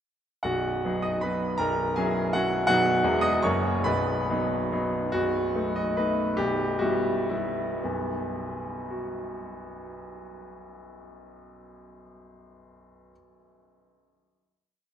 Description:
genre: classical, romantic triple-time dance for piano with dotted rhythms.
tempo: 104-177 BPM.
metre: 3/4.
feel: rubato.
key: B major.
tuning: A4 = 440 Hz.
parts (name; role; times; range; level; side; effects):
bright baby grand piano; solo; 0.4-13.1 s; B0 to D#6; -25 LUFS; equal; none.
room: wet cathedral reverb, RT60 6.6 s.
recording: in a vast, echoing space.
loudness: -24 LUFS.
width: side -9 dB against mid.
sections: 0.4-5.1 A section; 5.1-7.9 coda; 7.9-10.9 final chord.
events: slowing down 4.5-7.9.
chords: 0.4 B; 1.6 F#7/B; 2.7 B; 3.0 E; 3.4 F#; 3.9 B; 5.1 B7; 6.4 Em/B; 7.9 B5.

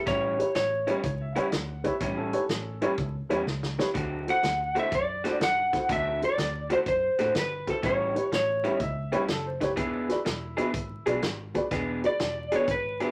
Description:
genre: electric blues shuffle.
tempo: 124 BPM.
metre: 4/4.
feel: swing 67% on 8ths.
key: A mixolydian.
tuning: A4 = 440 Hz.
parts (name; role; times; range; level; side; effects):
electric slide guitar; melody; 0.1-1.0, 4.3-8.8, 12.1-13.1 s; A4 to F#5; -29 LUFS; equal; none.
electric guitar through a small old amp; riff; 0.1-13.1 s; A2 to G#4; -35 LUFS; equal; none.
vintage muted fingered electric bass; bass; 0.1-13.0 s; E1 to A2; -40 LUFS; equal; none.
natural country drum kit; drums; 0.1-13.1 s; hi-hat, kick drum, snare drum; -36 LUFS; equal; none.
dark baby grand piano; accompaniment; 0.4-13.1 s; E4 to E5; -32 LUFS; equal; none.
warm upright piano; second line; 1.1-3.1, 8.8-11.2 s; C#4 to F#5; -40 LUFS; equal; none.
room: moderate club reverb, RT60 0.5 s.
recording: vinyl crackle.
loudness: -28 LUFS.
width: mono.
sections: 0.0-13.1 A section.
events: drum fill 3.5-4.0.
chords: 0.0 A7; 4.0 D7; 7.8 A7; 9.8 E7.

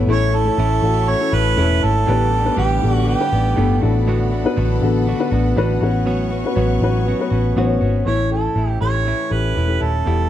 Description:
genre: piano-driven pop.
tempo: 120 BPM.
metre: 4/4.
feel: straight.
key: A mixolydian.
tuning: A4 = 438 Hz.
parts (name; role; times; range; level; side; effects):
dark upright piano; accompaniment; 0.0-10.3 s; A2 to C#5; -21 LUFS; left 6 dB; none.
clear studio string section; sustained chords; 0.0-8.0 s; A4 to D6; -33 LUFS; left 3 dB; none.
direct-recorded clean electric guitar; riff; 0.0-10.3 s; E2 to G4; -25 LUFS; right 5 dB; none.
vintage muted picked electric bass; bass; 0.0-10.3 s; D#1 to A1; -18 LUFS; equal; none.
mellow harmonica; melody; 0.1-3.8, 8.1-10.3 s; G4 to C#5; -21 LUFS; right 4 dB; none.
room: light reverb.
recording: dark, warm production.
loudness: -15 LUFS.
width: side -11 dB against mid.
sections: 0.1-8.1 A section; 8.1-10.3 B section.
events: none.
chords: 0.1 A; 2.1 G/A; 3.8 D6/A; 5.8 Bsus2/A; 8.1 A.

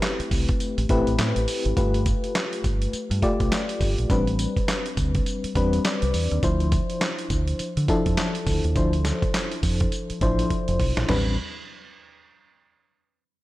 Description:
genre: R&B, new jack swing.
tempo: 103 BPM.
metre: 4/4.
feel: swing 60% on 16ths.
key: A minor.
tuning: A4 = 440 Hz.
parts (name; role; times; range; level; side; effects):
FM electric piano with tremolo; accompaniment; 0.0-11.4 s; F3 to D5; -26 LUFS; left 2 dB; none.
dusty soul sampler-style drum kit; drums; 0.0-11.3 s; crash cymbal, handclaps, hi-hat, kick drum, snare drum, tambourine, toms; -26 LUFS; equal; none.
deep dub fingered electric bass; bass; 0.2-11.4 s; F1 to D3; -24 LUFS; equal; none.
room: digital ambience.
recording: none.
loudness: -21 LUFS.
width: side -17 dB against mid.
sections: 0.0-1.8 A section; 1.8-11.1 B section; 11.1-13.4 C section.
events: FM electric piano fill 5.6-6.4; drum fill 10.5-11.1.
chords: 0.0 Am9; 1.8 G9; 4.1 Am11; 6.4 Dm9; 11.1 Am11.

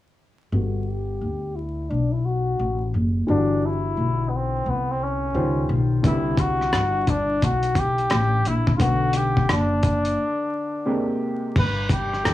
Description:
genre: hip hop, jazz-hop.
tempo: 87 BPM.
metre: 4/4.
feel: swing 64% on 16ths.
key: G major.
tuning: A4 = 440 Hz.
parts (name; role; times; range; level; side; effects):
breathy trumpet; melody; 0.5-12.3 s; B3 to B4; -25 LUFS; left 1 dB; low-pass filter, cassette tape.
dark grand piano; accompaniment; 0.5-12.3 s; C3 to F#5; -28 LUFS; left 1 dB; low-pass filter, cassette tape.
upright bass; bass; 0.5-12.3 s; F#1 to D2; -24 LUFS; left 1 dB; none.
cloth-damped thuddy drum kit; drums; 6.0-12.3 s; crash cymbal, hi-hat, kick drum, rim click; -22 LUFS; left 1 dB; none.
room: light reverb.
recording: home recording on cassette, vinyl crackle, small room ambience.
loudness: -20 LUFS.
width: side -14 dB against mid.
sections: 0.5-11.6 A section.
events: filter sweep 0.5-11.6; break 10.2-11.6.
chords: 0.5 Gmaj9; 3.3 Em9/G; 5.3 C#maj9#11; 6.0 Cmaj9#11; 8.8 Bm7; 10.9 Abmaj9; 11.6 Gadd9.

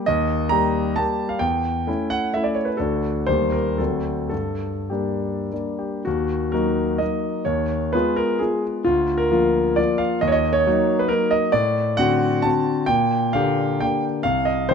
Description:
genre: classical, romantic triple-time dance for piano with dotted rhythms.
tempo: 94-147 BPM.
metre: 3/4.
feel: rubato.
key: G minor, Eb minor from 6.1 s, G minor from 11.5 s.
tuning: A4 = 441 Hz.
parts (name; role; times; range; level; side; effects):
clear grand piano; solo; 0.0-14.7 s; C2 to Bb5; -19 LUFS; equal; none.
room: moderate recital hall reverb, RT60 1.6 s.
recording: close, detailed microphones.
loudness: -19 LUFS.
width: side -6 dB against mid.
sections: 0.0-6.1 A section; 6.1-14.7 B section.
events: none.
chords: 0.1 Eb; 1.4 A7/E; 2.8 D; 3.3 Eb; 3.8 D7; 4.3 Gm; 6.1 Ebm; 7.5 Fm7b5/Eb; 8.9 Bb/D; 10.2 Ebm; 11.5 D7/A; 12.9 Gm/Bb.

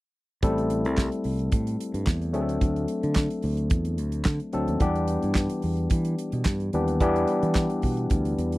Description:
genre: disco.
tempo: 109 BPM.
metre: 4/4.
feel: straight.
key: A dorian.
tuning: A4 = 440 Hz.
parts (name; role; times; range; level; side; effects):
barky tine electric piano; accompaniment; 0.4-8.6 s; E3 to A4; -26 LUFS; left 2 dB; none.
fingered electric bass; bass; 0.4-8.6 s; A1 to E3; -27 LUFS; equal; none.
damped 70s drum kit; drums; 0.4-8.6 s; handclaps, hi-hat, kick drum, snare drum; -25 LUFS; right 1 dB; none.
room: little or no reverb.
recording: dry, close 1970s-style studio recording.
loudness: -23 LUFS.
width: side -19 dB against mid.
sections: 0.4-8.6 A section.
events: none.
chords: 0.4 Am7; 2.3 D7; 4.8 Em7.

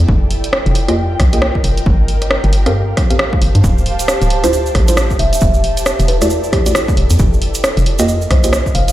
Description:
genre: UK garage, two-step garage.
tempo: 135 BPM.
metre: 4/4.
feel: swing 60% on 16ths.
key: unclear.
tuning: A4 = 439 Hz.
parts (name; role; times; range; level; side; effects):
hollow knocking FM bass; bass; 0.0-8.9 s; D1 to G2; -15 LUFS; equal; sidechain pumping.
punchy analog drum machine; drums; 0.0-8.9 s; hi-hat, rim click; -19 LUFS; equal; none.
ethereal airy pad; texture; 0.0-8.9 s; E4 to A5; -23 LUFS; right 1 dB; ensemble chorus, built-in reverb, tremolo, sidechain pumping.
electronic kick drum; drums; 0.1-8.7 s; none; -15 LUFS; equal; none.
deep mellow chord stab; stabs; 0.9-8.5 s; G3 to F5; -19 LUFS; right 1 dB; chorus, dub echo.
tube shaker; percussion; 3.6-8.9 s; none; -26 LUFS; right 4 dB; none.
kalimba; melody; 4.4-8.9 s; G4 to F5; -20 LUFS; equal; dub echo.
room: light reverb, digital ambience.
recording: played on a big sound system in a bare room, large studio reverb.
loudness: -11 LUFS.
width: side -14 dB against mid.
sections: 0.0-8.9 A section.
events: none.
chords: 0.1 Fm11; 1.9 Gm11; 3.6 Dm11; 5.2 Em11; 7.2 Fm11.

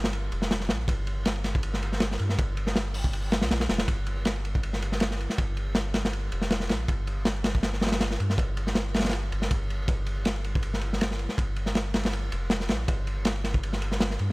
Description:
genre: drum and bass, jungle.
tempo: 160 BPM.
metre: 4/4.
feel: swing 54% on 16ths.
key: G minor.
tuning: A4 = 440 Hz.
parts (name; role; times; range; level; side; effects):
soft dub sub bass; bass; 0.0-14.3 s; F1 to G2; -30 LUFS; equal; none.
crunchy breakbeat drum kit; drums; 0.0-14.3 s; hi-hat, kick drum, ride cymbal, snare drum; -27 LUFS; equal; none.
room: little or no reverb.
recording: none.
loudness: -25 LUFS.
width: side -24 dB against mid.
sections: 0.0-14.3 A section.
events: none.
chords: none.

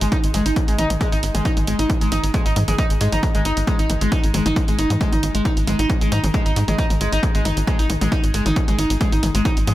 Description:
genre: driving peak-time techno.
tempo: 135 BPM.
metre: 4/4.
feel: straight.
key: unclear.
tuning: A4 = 443 Hz.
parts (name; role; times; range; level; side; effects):
overdriven synth lead; riff; 0.0-9.7 s; G#3 to D#4; -22 LUFS; equal; distortion, lush chorus, sidechain pumping, tape echo.
tight sequencer bass; bass; 0.0-9.7 s; G#1 to G#2; -22 LUFS; equal; tube saturation, sidechain pumping.
punchy analog drum machine; drums; 0.0-9.7 s; hi-hat, toms; -26 LUFS; equal; sidechain pumping on hats, sidechain pumping on toms, sidechain pumping on cymbals.
electronic kick drum; drums; 0.1-9.5 s; none; -20 LUFS; equal; none.
room: light reverb, digital ambience.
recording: none.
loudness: -17 LUFS.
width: side -15 dB against mid.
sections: 0.0-9.7 A section.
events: none.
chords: 0.0 G#5.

